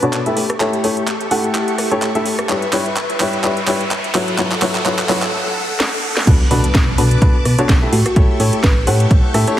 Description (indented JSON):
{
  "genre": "piano house",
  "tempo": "127 BPM",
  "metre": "4/4",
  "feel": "swing 55% on 16ths",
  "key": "B minor",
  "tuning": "A4 = 439 Hz",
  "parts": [
    { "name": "string machine, violins", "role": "sustained chords", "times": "0.0-9.6 s", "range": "G4 to E6", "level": "-24 LUFS", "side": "equal", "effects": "ensemble chorus, vintage 12-bit sampler grit, sidechain pumping" },
    { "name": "clear upright piano", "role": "riff", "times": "0.0-9.6 s", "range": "B2 to F#5", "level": "-19 LUFS", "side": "left 1 dB", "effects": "sidechain pumping, low-pass filter, ping-pong delay" },
    { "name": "garage drum kit", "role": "drums", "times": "0.0-9.6 s", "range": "crash cymbal, handclaps, hi-hat, rim click, snare drum", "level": "-21 LUFS", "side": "equal", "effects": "high-pass filter on perc, small room ambience, high-pass filter on snare, high-pass filter on hats, high-pass filter on cymbals" },
    { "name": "riser and impact", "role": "sound effects", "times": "1.2-8.2 s", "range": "none", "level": "-25 LUFS", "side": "equal", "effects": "none" },
    { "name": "solid FM bass", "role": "bass", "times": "0.1-9.4 s", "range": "G1 to B2", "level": "-19 LUFS", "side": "equal", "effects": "sidechain pumping, high-pass filter" },
    { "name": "electronic kick drum", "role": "drums", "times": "6.3-9.2 s", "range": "none", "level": "-13 LUFS", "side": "equal", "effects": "small room ambience" },
    { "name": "thumb-piano-like synth pluck", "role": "melody", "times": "7.0-9.0 s", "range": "F#4 to C#5", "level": "-24 LUFS", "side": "left 1 dB", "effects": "chorus, ping-pong delay" }
  ],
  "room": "light reverb",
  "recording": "heavily compressed radio sound, multiband compression",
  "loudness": "-13 LUFS",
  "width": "side -12 dB against mid",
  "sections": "0.0-6.3 A section; 6.3-9.6 B section",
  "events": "build-up 0.0-6.3; drum fill 0.0-5.3, 5.8-6.3; filter sweep on string machine 0.0-6.3; riser 1.2-6.3; drop 6.3-9.6; impact 6.3-8.2",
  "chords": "0.4 A7; 2.5 C#m7b5/G; 4.1 F#m7; 6.3 Bm7; 7.9 A7"
}